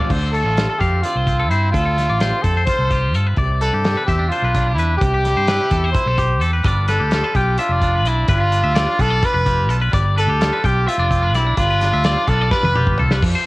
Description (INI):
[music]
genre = math rock and midwest emo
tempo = 256 BPM (eighths)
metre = 7/8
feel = straight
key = unclear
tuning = A4 = 438 Hz
[part]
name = twangy electric guitar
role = accompaniment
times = 0.0-13.5 s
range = C3 to B4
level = -28 LUFS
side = right 4 dB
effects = cassette tape
[part]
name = twangy electric guitar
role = arpeggios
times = 0.0-13.5 s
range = F4 to G5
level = -23 LUFS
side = left 3 dB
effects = spring reverb, cassette tape
[part]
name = fingered electric bass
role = bass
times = 0.1-13.3 s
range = F1 to G2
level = -19 LUFS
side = equal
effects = none
[part]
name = loose indie drum kit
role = drums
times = 0.1-13.3 s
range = crash cymbal, hi-hat, kick drum, snare drum, toms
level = -22 LUFS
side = equal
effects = none
[part]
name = bright trumpet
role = melody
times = 0.3-13.0 s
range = E4 to C5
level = -20 LUFS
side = equal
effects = cassette tape
[sound]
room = little or no reverb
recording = home recording on cassette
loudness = -15 LUFS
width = side -20 dB against mid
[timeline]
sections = 0.1-13.2 A section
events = drum fill 12.5-13.2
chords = 0.1 Dm7; 3.4 Cmaj9; 6.7 G7